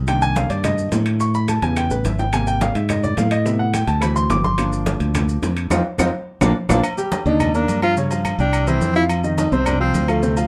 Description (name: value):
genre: Afro-Cuban jazz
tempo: 213 BPM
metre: 4/4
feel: straight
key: unclear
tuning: A4 = 438 Hz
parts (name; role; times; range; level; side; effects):
- modern bright fingered electric bass; bass; 0.0-10.5 s; G1 to A2; -23 LUFS; equal; none
- warm baby grand piano; accompaniment; 0.1-10.5 s; C3 to D6; -24 LUFS; equal; none
- bongos; percussion; 0.1-6.8 s; none; -33 LUFS; equal; none
- claves; percussion; 0.1-10.2 s; none; -33 LUFS; equal; none
- congas; percussion; 0.1-10.5 s; none; -28 LUFS; equal; none
- maracas; percussion; 0.1-10.5 s; none; -39 LUFS; equal; none
- timbales and agogo bells; percussion; 0.1-10.5 s; none; -31 LUFS; equal; none
- breathy tenor saxophone; melody; 7.3-10.4 s; A3 to F4; -23 LUFS; equal; none
room: moderate club reverb, RT60 0.7 s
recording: none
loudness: -19 LUFS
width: mono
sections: 0.0-6.8 A section; 6.8-10.5 A section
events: grand piano solo 0.0-6.8; drum fill 1.9-2.3, 6.3-6.8; band accent 5.7-6.8; tenor saxophone solo 6.8-10.5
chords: 0.1 Cm9; 1.2 A9; 2.3 Abmaj7; 3.5 Am7; 4.0 D7; 4.6 Gm7; 5.7 F5; 6.3 Bb; 6.8 Ebmaj9; 8.0 Dbmaj7#11; 8.5 C; 9.1 F5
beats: | 0.08 0.36 0.64 0.92 | 1.21 1.49 1.77 2.05 | 2.33 2.61 2.90 3.18 | 3.46 3.74 4.02 4.30 | 4.58 4.87 5.15 5.43 | 5.71 5.99 6.28 6.56 | 6.84 7.12 7.41 7.69 | 7.97 8.25 8.53 8.82 | 9.10 9.38 9.66 9.95 | 10.23